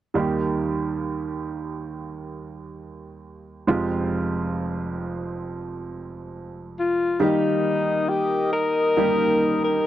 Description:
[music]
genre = pop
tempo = 68 BPM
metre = 4/4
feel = straight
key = Eb major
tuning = A4 = 439 Hz
[part]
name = bright baby grand piano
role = accompaniment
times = 0.1-9.9 s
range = F1 to G4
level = -25 LUFS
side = right 3 dB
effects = none
[part]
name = breathy alto saxophone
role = melody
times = 6.8-9.9 s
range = Eb4 to Bb4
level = -21 LUFS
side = left 3 dB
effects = none
[part]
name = chorused pulse-width pad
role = sustained chords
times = 7.2-9.9 s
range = Bb4 to Eb6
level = -29 LUFS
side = left 1 dB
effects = none
[part]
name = nylon-string guitar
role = arpeggios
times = 7.2-9.9 s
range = Eb3 to G4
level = -31 LUFS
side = left 13 dB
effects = none
[sound]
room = light reverb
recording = dry, close 1970s-style studio recording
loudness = -21 LUFS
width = side -12 dB against mid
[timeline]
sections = 0.1-7.2 A section; 7.2-9.9 B section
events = none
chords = 0.1 Eb; 3.7 Fmadd9; 7.2 Eb

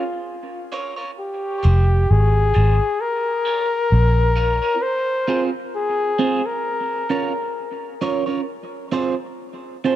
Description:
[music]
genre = dub reggae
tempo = 66 BPM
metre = 4/4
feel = swing 56% on 16ths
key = Bb dorian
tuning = A4 = 442 Hz
[part]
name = warm flugelhorn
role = melody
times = 0.0-8.0 s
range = F4 to C5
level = -22 LUFS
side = left 2 dB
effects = dub echo
[part]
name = electric guitar at the edge of break-up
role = accompaniment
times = 0.0-10.0 s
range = C4 to Db5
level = -25 LUFS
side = right 5 dB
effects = phaser, high-pass filter, dub echo
[part]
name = vintage muted fingered electric bass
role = bass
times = 1.6-4.6 s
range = F1 to Bb1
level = -15 LUFS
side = equal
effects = none
[sound]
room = light reverb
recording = dark, warm production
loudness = -18 LUFS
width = side -12 dB against mid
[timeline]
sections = 0.0-8.5 A section; 8.5-10.0 B section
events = break 0.0-1.2, 4.8-8.5; filter sweep on clean electric guitar 0.0-4.8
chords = 0.0 Bbm; 1.2 Fm; 3.0 Bbm; 4.8 Fm; 6.7 Bbm; 8.5 Fm

